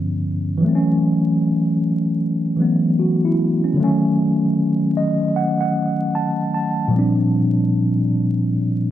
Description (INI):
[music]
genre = hip hop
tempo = 76 BPM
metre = 4/4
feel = swing 63% on 16ths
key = unclear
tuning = A4 = 440 Hz
[part]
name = mellow tine electric piano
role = solo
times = 0.0-8.9 s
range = G2 to A5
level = -16 LUFS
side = equal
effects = medium stereo tremolo, cassette tape, low-pass filter
[sound]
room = moderate plate reverb, RT60 3.0 s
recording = vinyl crackle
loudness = -16 LUFS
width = side -12 dB against mid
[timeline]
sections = 0.0-8.9 A section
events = tine electric piano fill 4.6-6.9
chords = 0.0 G7#11; 0.6 F#m7; 3.8 D#m7b5; 6.9 Bb6